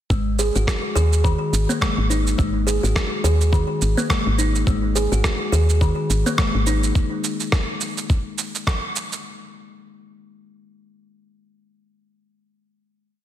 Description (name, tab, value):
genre	organic downtempo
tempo	105 BPM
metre	4/4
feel	swing 57% on 16ths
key	unclear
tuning	A4 = 440 Hz
part	kalimba	arpeggios	0.1-6.8 s	Eb3 to Ab4	-24 LUFS	left 1 dB	digital delay
part	woody FM bass	bass	0.1-6.9 s	Ab1 to Eb2	-19 LUFS	equal	sidechain pumping
part	electronic kick drum	drums	0.1-8.8 s	none	-20 LUFS	equal	overdrive, studio reverb
part	electronic shaker and rim click	drums	0.1-9.2 s	none	-25 LUFS	right 2 dB	overdrive, studio reverb
room	light reverb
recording	dense, heavily limited modern master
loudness	-18 LUFS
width	side -12 dB against mid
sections	0.1-9.2 groove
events	none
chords	0.1 Ab5